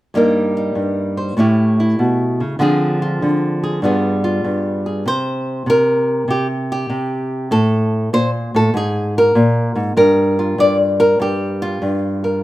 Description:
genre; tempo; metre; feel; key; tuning
solo jazz; 98 BPM; 4/4; swing 68% on 8ths; unclear; A4 = 441 Hz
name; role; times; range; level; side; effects
nylon-string guitar; solo; 0.1-12.4 s; G2 to D5; -14 LUFS; equal; none
room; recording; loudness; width
light reverb; minimal, uncompressed stereo recording; -14 LUFS; side -16 dB against mid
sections
0.1-5.0 A section; 5.0-12.4 B section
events
none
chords
0.1 Cm7/G; 1.4 A7; 2.6 Dm7b5; 3.8 G7b9; 5.0 N.C.; 7.5 Am; 8.7 Absus2; 10.0 Gm7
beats
| 0.13 0.74 1.35 1.97 | 2.58 3.20 3.81 4.43 | 5.04 5.66 6.27 6.89 | 7.50 8.12 8.73 9.35 | 9.96 10.57 11.19 11.80 | 12.42

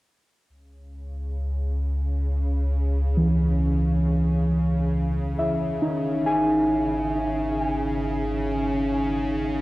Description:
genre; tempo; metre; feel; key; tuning
ambient; 68 BPM; 3/4; straight; C# minor; A4 = 440 Hz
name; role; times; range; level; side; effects
warm sub bass; bass; 0.5-9.6 s; G#1 to C#2; -26 LUFS; equal; none
bowed-like drone; drone; 1.3-9.6 s; C#3; -30 LUFS; equal; built-in reverb, cassette tape
muted felt-like synth keys; arpeggios; 3.2-9.6 s; E3 to G#5; -23 LUFS; equal; chorus, cassette tape, analog delay
room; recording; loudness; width
wet studio reverb, RT60 0.6 s; home recording on cassette; -22 LUFS; side -19 dB against mid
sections
0.5-9.6 A section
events
none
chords
0.5 C#m; 5.8 G#sus4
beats
| 0.49 1.39 2.28 | 3.17 4.05 4.93 | 5.81 6.69 7.57 | 8.46 9.36

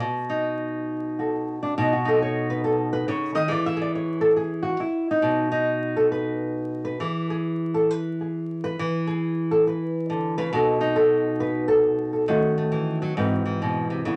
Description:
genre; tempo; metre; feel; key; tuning
solo jazz; 137 BPM; 4/4; swing 65% on 8ths, rubato; B mixolydian; A4 = 440 Hz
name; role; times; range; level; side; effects
flamenco guitar; solo; 0.0-14.2 s; G#2 to E5; -24 LUFS; equal; none
room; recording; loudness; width
moderate studio reverb, RT60 0.5 s; vinyl crackle; -24 LUFS; mono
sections
0.0-14.2 A section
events
nylon-string guitar solo 0.0-14.2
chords
0.0 B7; 3.5 E; 5.2 B; 7.0 E7; 10.5 B7; 12.3 D#m7b5; 13.2 G#7alt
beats
| 0.01 0.46 0.91 1.35 | 1.79 2.22 2.65 3.08 | 3.50 3.93 4.37 4.80 | 5.24 5.68 6.12 6.57 | 7.02 7.47 7.92 8.37 | 8.81 9.24 9.68 10.11 | 10.54 10.97 11.40 11.84 | 12.27 12.72 13.16 13.61 | 14.05

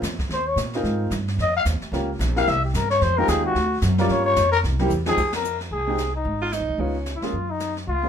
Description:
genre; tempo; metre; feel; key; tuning
jazz, small-group swing and bop; 222 BPM; 4/4; swing 59% on 8ths; F minor; A4 = 440 Hz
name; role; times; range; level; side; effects
warm upright piano; accompaniment; 0.0-8.1 s; F3 to Bb4; -26 LUFS; right 1 dB; none
upright bass; bass; 0.0-8.1 s; Ab1 to Bb2; -25 LUFS; right 1 dB; none
jazz brush drum kit; drums; 0.0-8.1 s; brushed snare drum, crash cymbal, hi-hat, kick drum, ride cymbal, snare drum; -32 LUFS; equal; none
growling trumpet; melody; 0.3-8.1 s; Eb4 to F5; -22 LUFS; left 3 dB; none
growling alto saxophone; second line; 6.4-7.2 s; Db4 to F4; -27 LUFS; right 4 dB; none
room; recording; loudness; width
moderate small room reverb, RT60 0.5 s; minimal, uncompressed stereo recording; -20 LUFS; side -8 dB against mid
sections
0.0-5.2 A section; 5.2-8.1 B section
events
trumpet solo 0.0-5.2; drum fill 4.9; band accent 5.3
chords
0.3 Eb5; 0.8 Ab6; 1.9 Gm7b5; 2.5 C5; 3.0 Fm7; 3.6 D; 4.1 Gm7b5; 4.6 C7; 5.2 Fm; 6.3 Abm; 6.8 Db7; 7.3 Gbmaj7(no3)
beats
0.04 0.31 0.58 | 0.85 1.12 1.39 1.66 | 1.93 2.20 2.47 2.74 | 3.01 3.28 3.55 3.82 | 4.09 4.36 4.63 4.90 | 5.17 5.44 5.71 5.99 | 6.26 6.53 6.80 7.07 | 7.34 7.61 7.88

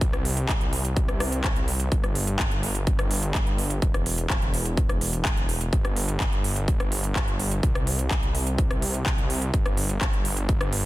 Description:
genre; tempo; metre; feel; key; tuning
EDM, festival progressive house; 126 BPM; 4/4; straight; unclear; A4 = 439 Hz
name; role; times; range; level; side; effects
detuned saw bass; bass; 0.0-10.9 s; E1 to C2; -27 LUFS; equal; tube saturation, sidechain pumping
big-room dance drum kit; drums; 0.0-10.8 s; handclaps, hi-hat, rim click; -29 LUFS; equal; none
electronic kick drum; drums; 0.0-10.6 s; none; -24 LUFS; equal; none
room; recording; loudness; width
digital ambience; dense, heavily limited modern master; -22 LUFS; side -17 dB against mid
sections
0.0-10.9 A section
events
none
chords
none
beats
| 0.01 0.49 0.97 1.44 | 1.92 2.39 2.87 3.35 | 3.82 4.30 4.78 5.25 | 5.73 6.20 6.68 7.16 | 7.63 8.11 8.59 9.06 | 9.54 10.01 10.49

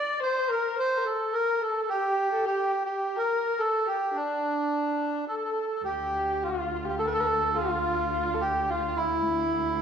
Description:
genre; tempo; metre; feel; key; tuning
Persian modal ensemble; 106 BPM; 3/4; straight; D dastgah shur; A4 = 440 Hz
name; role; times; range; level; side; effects
melodica; melody; 0.0-9.8 s; D4 to D5; -27 LUFS; right 2 dB; none
warm kamancheh; second line; 0.0-9.8 s; D4 to D5; -30 LUFS; left 2 dB; none
clear cello; drone; 5.8-9.8 s; D2; -35 LUFS; right 2 dB; none
room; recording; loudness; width
wet large studio reverb, RT60 1.4 s; band playing live in one room; -25 LUFS; side -7 dB against mid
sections
0.0-5.9 A section; 5.9-9.8 B section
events
none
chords
none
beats
0.20 | 0.77 1.33 1.90 | 2.46 3.03 3.60 | 4.16 4.73 5.29 | 5.86 6.42 6.99 | 7.55 8.12 8.69 | 9.25 9.82

